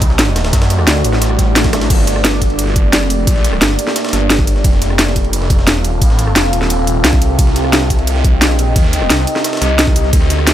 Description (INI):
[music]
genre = dark technical drum and bass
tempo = 175 BPM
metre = 4/4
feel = straight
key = unclear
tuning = A4 = 440 Hz
[part]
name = deep dark ambient pad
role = sustained chords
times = 0.0-10.5 s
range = A3 to F5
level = -19 LUFS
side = equal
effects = chorus, built-in reverb, sidechain pumping
[part]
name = phased detuned saw bass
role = bass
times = 0.0-10.5 s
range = Eb1 to F#2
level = -15 LUFS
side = equal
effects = phaser, sidechain pumping
[part]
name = breakbeat sampler-style drum kit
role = drums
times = 0.0-10.5 s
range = ride cymbal, snare drum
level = -24 LUFS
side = right 1 dB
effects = high-pass filter on cymbals, high-pass filter on snare, high-pass filter on room
[part]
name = drum and bass drum kit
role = drums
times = 0.0-10.5 s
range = crash cymbal, hi-hat, rim click, snare drum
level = -15 LUFS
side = equal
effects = overdrive
[part]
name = electronic kick drum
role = drums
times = 0.0-10.2 s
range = none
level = -13 LUFS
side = equal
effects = overdrive
[part]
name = swell and zap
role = sound effects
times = 1.3-1.9 s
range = none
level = -25 LUFS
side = right 2 dB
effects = none
[sound]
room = little or no reverb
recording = none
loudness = -10 LUFS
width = side -12 dB against mid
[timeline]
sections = 0.0-10.5 A section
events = swell 1.3-1.9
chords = 0.0 D; 1.9 Gm; 4.6 F; 7.4 Cm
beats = 0.19 | 0.53 0.87 1.22 1.56 | 1.90 2.24 2.59 2.93 | 3.27 3.62 3.96 4.30 | 4.64 4.99 5.33 5.67 | 6.02 6.36 6.70 7.04 | 7.39 7.73 8.07 8.42 | 8.76 9.10 9.44 9.79 | 10.13 10.47